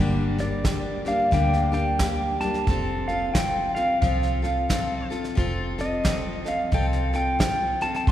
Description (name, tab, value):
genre	honky-tonk and classic country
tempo	89 BPM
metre	4/4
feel	swing 61% on 8ths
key	unclear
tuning	A4 = 440 Hz
part	picked steel-string acoustic guitar	accompaniment	0.0-8.1 s	G2 to A4	-28 LUFS	left 2 dB	none
part	vintage muted fingered electric bass	bass	0.0-8.1 s	F1 to D2	-28 LUFS	equal	none
part	pedal steel guitar	melody	0.4-8.1 s	D5 to C6	-26 LUFS	equal	none
part	soft brush drum kit	drums	0.4-8.1 s	hi-hat, kick drum, snare drum	-27 LUFS	right 1 dB	none
room	wet church reverb, RT60 3.4 s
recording	recorded in a church or concert hall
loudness	-22 LUFS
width	side -12 dB against mid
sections	0.0-8.1 A section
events	none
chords	0.0 Gm; 2.7 F